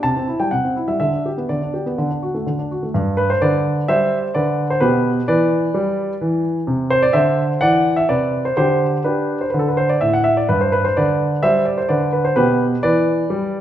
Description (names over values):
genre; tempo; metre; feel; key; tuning
classical-period piano sonatina; 127 BPM; 4/4; straight; G major; A4 = 440 Hz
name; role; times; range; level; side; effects
warm baby grand piano; solo; 0.0-13.6 s; G2 to A5; -16 LUFS; equal; none
room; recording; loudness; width
wet recital hall reverb, RT60 1.3 s; recorded in a church or concert hall; -16 LUFS; side -11 dB against mid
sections
0.0-2.9 A section; 2.9-13.6 B section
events
none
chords
0.0 C6; 1.0 G/D; 2.0 D; 2.9 G; 4.8 G/B; 6.7 Cmaj9#11; 8.6 G5/D; 9.5 D5; 10.5 G; 12.4 G/B